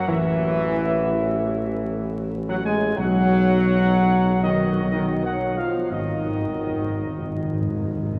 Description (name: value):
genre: classical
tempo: 62 BPM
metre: 3/4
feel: straight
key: unclear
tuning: A4 = 442 Hz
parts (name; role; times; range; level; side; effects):
- mellow trumpet section; melody; 0.0-7.9 s; Eb5 to Ab5; -30 LUFS; equal; none
- mellow French horn section; sustained chords; 0.0-7.9 s; Eb3 to Ab3; -30 LUFS; equal; none
- warm trombone section; sustained chords; 0.0-7.9 s; Eb3 to Ab3; -26 LUFS; equal; none
- mellow tuba; bass; 0.1-8.2 s; Ab1 to Cb2; -28 LUFS; equal; none
- timpani; percussion; 5.9-8.2 s; Ab2; -30 LUFS; equal; none
room: wet cathedral reverb, RT60 6.3 s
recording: heard from further back in the room, vinyl crackle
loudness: -22 LUFS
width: mono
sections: 0.0-8.2 A section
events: timpani fill 5.9-8.2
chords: 0.1 A5; 3.0 Cb5; 5.9 Ab5